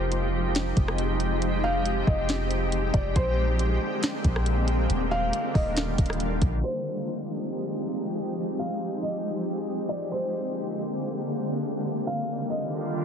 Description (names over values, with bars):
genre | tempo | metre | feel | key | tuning
hip hop, atmospheric cloud-rap | 138 BPM | 4/4 | half-time | F dorian | A4 = 438 Hz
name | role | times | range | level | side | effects
felt-muted upright piano | melody | 0.0-13.0 s | C5 to F5 | -32 LUFS | equal | ping-pong delay
shimmering ambient pad | sustained chords | 0.0-13.0 s | D3 to G4 | -28 LUFS | equal | chorus, built-in reverb, sidechain pumping
soft 808-style bass | bass | 0.0-6.6 s | Eb1 to Bb1 | -27 LUFS | equal | none
smooth R&B drum kit | drums | 0.1-6.5 s | hi-hat, kick drum, rim click, snare drum | -26 LUFS | equal | vintage 12-bit sampler grit
room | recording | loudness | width
little or no reverb | heavily compressed radio sound, multiband compression, low-pass filter | -24 LUFS | side -7 dB against mid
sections
0.0-6.6 A section; 6.6-13.0 B section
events
filter sweep 6.6-13.0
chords
0.0 Fm9; 3.2 Bb13; 4.9 Ebmaj9; 6.6 Fm9; 10.1 Bb13; 11.9 Ebmaj9